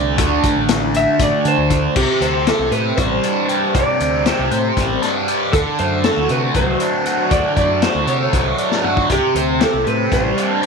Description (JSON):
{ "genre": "psychedelic rock", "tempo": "235 BPM (eighths)", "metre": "7/8", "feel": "straight", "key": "unclear", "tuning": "A4 = 440 Hz", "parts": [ { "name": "fuzz guitar", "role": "riff", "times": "0.0-10.7 s", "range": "C3 to G4", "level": "-18 LUFS", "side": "right 1 dB", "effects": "distortion, phaser" }, { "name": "growling fingered electric bass", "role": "bass", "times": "0.0-10.3 s", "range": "A1 to D3", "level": "-23 LUFS", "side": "right 1 dB", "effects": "overdrive" }, { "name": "vintage drum kit", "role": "drums", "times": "0.2-10.7 s", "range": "crash cymbal, hi-hat, kick drum, snare drum, toms", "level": "-21 LUFS", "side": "left 4 dB", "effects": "none" }, { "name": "electric slide guitar", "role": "melody", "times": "1.0-10.7 s", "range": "G4 to E5", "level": "-20 LUFS", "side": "equal", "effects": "slapback echo" } ], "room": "light reverb, small room ambience", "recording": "1960s-style stereo", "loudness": "-14 LUFS", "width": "side -5 dB against mid", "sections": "0.0-2.0 A section; 2.0-10.7 B section", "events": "electric slide guitar solo 0.0-2.0; drum fill 8.7-9.1", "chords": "0.0 D5; 2.0 Csus2; 5.5 D; 9.1 Csus2", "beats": "| 0.19 0.45 0.70 0.95 1.21 1.46 1.71 | 1.97 2.22 2.47 2.73 2.98 3.24 3.49 | 3.75 4.00 4.25 4.51 4.76 5.02 5.28 | 5.53 5.79 6.04 6.29 6.55 6.81 7.06 | 7.32 7.57 7.83 8.08 8.34 8.59 8.85 | 9.10 9.36 9.61 9.87 10.12 10.38 10.63" }